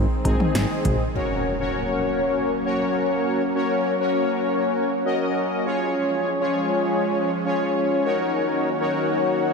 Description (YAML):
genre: synth-pop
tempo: 100 BPM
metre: 4/4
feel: straight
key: unclear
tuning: A4 = 441 Hz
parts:
  - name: lush unison pad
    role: sustained chords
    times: 0.0-9.5 s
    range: Eb3 to Gb4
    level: -26 LUFS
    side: equal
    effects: chorus
  - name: fat analog bass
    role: bass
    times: 0.0-1.0 s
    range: Ab1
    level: -24 LUFS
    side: equal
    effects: none
  - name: electro analog drum machine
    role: drums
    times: 0.2-1.0 s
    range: cowbell, hi-hat, kick drum, snare drum, toms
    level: -24 LUFS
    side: equal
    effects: overdrive
  - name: analog synth brass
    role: accompaniment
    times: 0.3-9.5 s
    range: C4 to Eb5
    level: -22 LUFS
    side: left 2 dB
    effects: chorus, slapback echo
  - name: impact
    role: sound effects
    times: 1.2-3.6 s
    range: none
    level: -34 LUFS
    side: equal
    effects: none
room: wet lush hall reverb, RT60 3.0 s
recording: big arena sound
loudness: -20 LUFS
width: side -4 dB against mid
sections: 0.0-1.2 A section; 1.2-9.5 B section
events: impact 1.2-3.6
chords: 0.0 Ab; 1.2 Gb; 5.7 Db; 8.1 Ebm7